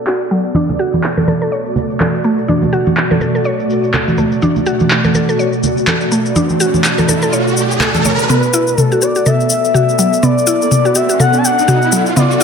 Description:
afro house; 124 BPM; 4/4; swing 58% on 16ths; B minor; A4 = 440 Hz
ethereal airy pad; sustained chords; 0.0-12.4 s; B2 to D5; -18 LUFS; equal; ensemble chorus, built-in reverb, tremolo
mallet-like synth pluck; arpeggios; 0.1-12.4 s; F#3 to C#5; -18 LUFS; equal; chorus, cassette tape, dub echo
afro-pop drum kit; drums; 0.1-12.3 s; handclaps, toms; -18 LUFS; left 1 dB
congas; percussion; 0.5-8.2 s; -16 LUFS; right 2 dB
cabasa; percussion; 0.6-12.4 s; -20 LUFS; left 5 dB
riser; sound effects; 6.1-12.4 s; -21 LUFS; right 2 dB
expressive portamento lead; melody; 8.3-12.4 s; B4 to A5; -15 LUFS; left 3 dB; lush chorus, dub echo
moderate lush hall reverb, RT60 2.2 s; low-pass filter; -11 LUFS; side -6 dB against mid
0.0-8.3 A section; 8.3-12.4 B section
filter sweep on drum 0.0-8.3; filter sweep on synth pluck 0.0-8.3; filter sweep 0.0-8.3; riser 6.1-8.3, 8.3-12.4; build-up 8.3-12.4; drum fill 8.3-12.4
0.0 Bm7; 0.6 D/B; 8.3 Bm7

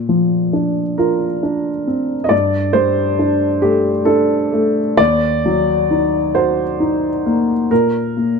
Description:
neoclassical minimalist piano; 45 BPM (dotted quarters); 6/8; rubato; A4 = 440 Hz
warm upright piano; solo; 0.0-8.4 s; Eb2 to Eb5; -14 LUFS; equal
light reverb; close, detailed microphones; -14 LUFS; side -5 dB against mid
0.0-8.4 A section
0.0 Bbadd9; 2.3 Gsus2; 5.0 Ebm; 7.7 N.C.

